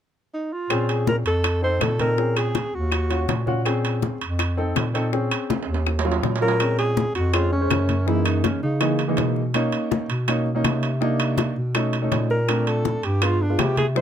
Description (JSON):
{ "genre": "Afro-Cuban jazz", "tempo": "163 BPM", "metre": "4/4", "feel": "straight", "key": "Bb minor", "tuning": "A4 = 440 Hz", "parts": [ { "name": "mellow alto saxophone", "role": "melody", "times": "0.3-3.5, 6.4-9.0, 12.3-14.0 s", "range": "Db4 to C5", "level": "-24 LUFS", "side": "right 1 dB", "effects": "none" }, { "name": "warm upright piano", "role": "accompaniment", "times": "0.7-14.0 s", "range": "Fb3 to C5", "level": "-25 LUFS", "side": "equal", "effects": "none" }, { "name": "dark bass clarinet", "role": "bass", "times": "0.7-14.0 s", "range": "Eb2 to Db3", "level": "-24 LUFS", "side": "equal", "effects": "none" }, { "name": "bongos", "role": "percussion", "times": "0.7-14.0 s", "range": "none", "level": "-29 LUFS", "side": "left 13 dB", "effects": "none" }, { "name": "claves", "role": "percussion", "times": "0.7-13.8 s", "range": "none", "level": "-30 LUFS", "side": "left 6 dB", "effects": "none" }, { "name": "congas", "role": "percussion", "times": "0.7-14.0 s", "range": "none", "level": "-30 LUFS", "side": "left 4 dB", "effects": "none" }, { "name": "timbales", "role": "percussion", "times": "0.7-14.0 s", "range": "none", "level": "-29 LUFS", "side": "right 9 dB", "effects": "none" } ], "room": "little or no reverb", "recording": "close, detailed microphones", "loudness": "-20 LUFS", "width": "side -9 dB against mid", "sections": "0.7-6.6 A section; 6.6-14.0 B section", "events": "drum fill 5.5-6.6", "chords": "0.0 N.C.; 0.7 Bbm9; 1.4 F7; 2.2 Bbm9; 2.9 Ebm7; 3.7 Bbm9; 4.4 F7; 5.1 Bbm9; 5.9 Ebm7; 6.6 Bbm9; 8.1 Gb13; 9.5 Bmaj7; 11.0 Cm9; 11.8 B9; 12.5 Bbmaj7; 13.2 G7b9" }